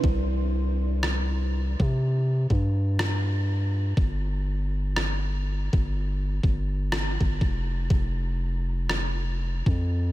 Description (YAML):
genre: contemporary R&B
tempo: 61 BPM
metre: 4/4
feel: swing 58% on 16ths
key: unclear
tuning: A4 = 440 Hz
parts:
  - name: long sustained 808-style bass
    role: bass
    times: 0.0-10.1 s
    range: F1 to C3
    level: -25 LUFS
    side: equal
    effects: none
  - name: detuned 8-bit digital drum machine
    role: drums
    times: 0.0-9.9 s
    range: kick drum, rim click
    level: -28 LUFS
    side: equal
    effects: none
room: digital ambience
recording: none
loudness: -24 LUFS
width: side -16 dB against mid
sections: 0.0-10.1 A section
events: break 0.0-10.1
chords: none